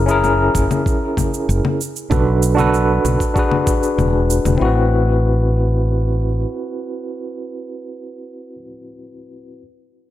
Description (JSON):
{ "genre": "sunset chillout", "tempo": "96 BPM", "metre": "4/4", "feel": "straight", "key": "A dorian", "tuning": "A4 = 440 Hz", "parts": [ { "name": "overdriven tine electric piano", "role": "accompaniment", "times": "0.0-9.6 s", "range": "C4 to B4", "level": "-19 LUFS", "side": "moving between left 4 dB and right 5 dB", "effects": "fast tremolo, auto-pan, digital delay" }, { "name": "mellow fretless electric bass", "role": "bass", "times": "0.0-6.4 s", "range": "E1 to B1", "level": "-17 LUFS", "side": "equal", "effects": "none" }, { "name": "cabasa and congas", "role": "drums", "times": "0.1-4.6 s", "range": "none", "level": "-24 LUFS", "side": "left 3 dB", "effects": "studio reverb" }, { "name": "electronic kick drum", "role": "drums", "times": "0.5-3.8 s", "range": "none", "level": "-20 LUFS", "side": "equal", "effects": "studio reverb" } ], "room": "light reverb, digital ambience", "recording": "none", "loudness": "-15 LUFS", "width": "side -13 dB against mid", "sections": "0.0-4.6 A section; 4.6-7.1 B section", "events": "filter sweep on fretless electric bass 0.0-4.6", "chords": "0.0 F#7; 1.8 Bm7; 3.4 E9; 4.6 Am69" }